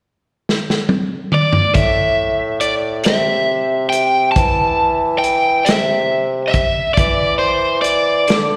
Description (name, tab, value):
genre	slow blues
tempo	46 BPM (dotted quarters)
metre	12/8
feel	straight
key	A minor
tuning	A4 = 440 Hz
part	vintage drum kit	drums	0.5-8.5 s	hi-hat, kick drum, snare drum, toms	-20 LUFS	equal	none
part	overdriven semi-hollow guitar	melody	1.3-8.6 s	C5 to A5	-18 LUFS	equal	slapback echo
part	warm bassoon	bass	1.8-8.6 s	A2 to E3	-23 LUFS	equal	none
room	light reverb, studio reverb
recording	live gig heard through the venue's PA, recital hall reverb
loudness	-16 LUFS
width	mono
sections	0.0-1.8 A section; 1.8-8.6 B section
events	drum fill 0.5-1.8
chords	0.0 N.C.; 1.8 Am